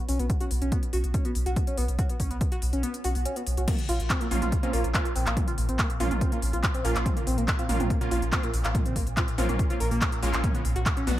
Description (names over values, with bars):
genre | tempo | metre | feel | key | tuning
driving peak-time techno | 142 BPM | 4/4 | straight | Bb minor | A4 = 437 Hz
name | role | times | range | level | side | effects
overdriven synth lead | riff | 0.1-11.1 s | Ab3 to Bb4 | -32 LUFS | equal | chorus, sidechain pumping, tape echo
saturated sub bass | bass | 0.1-11.2 s | Bb1 to B1 | -28 LUFS | equal | overdrive, sidechain pumping, low-pass filter
techno drum kit | drums | 0.1-11.2 s | crash cymbal, handclaps, hi-hat, toms | -32 LUFS | equal | none
electronic kick drum | drums | 0.3-10.9 s | none | -28 LUFS | equal | none
swarming drone | drone | 4.7-11.2 s | Bb2 | -38 LUFS | left 1 dB | built-in reverb, analog chorus, sidechain pumping
rave stab | stabs | 4.3-11.2 s | Bb3 to F#4 | -33 LUFS | right 2 dB | chorus, built-in reverb, sidechain pumping, tape echo
room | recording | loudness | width
light reverb | none | -24 LUFS | side -14 dB against mid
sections
0.0-3.7 A section; 3.7-11.2 B section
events
kick drops out 2.8-3.7; drop 3.7-11.2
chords
0.0 B5; 3.7 Bbm; 10.4 Bm